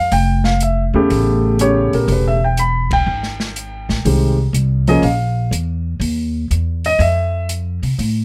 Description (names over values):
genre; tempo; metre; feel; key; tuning
jazz piano trio; 122 BPM; 4/4; swing 68% on 8ths; unclear; A4 = 444 Hz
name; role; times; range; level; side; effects
dark concert grand piano; melody; 0.0-7.5 s; Db3 to B5; -19 LUFS; equal; none
upright bass; bass; 0.0-8.2 s; E1 to C3; -20 LUFS; equal; none
open jazz drum kit; drums; 0.1-8.1 s; hi-hat, kick drum, ride cymbal, snare drum; -28 LUFS; equal; none
room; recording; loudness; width
light reverb; none; -17 LUFS; mono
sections
0.0-8.2 A section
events
band accent 2.8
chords
0.0 N.C.; 1.1 A9; 3.1 Abmaj7; 5.0 Bb5; 6.0 N.C.; 7.0 Fmaj7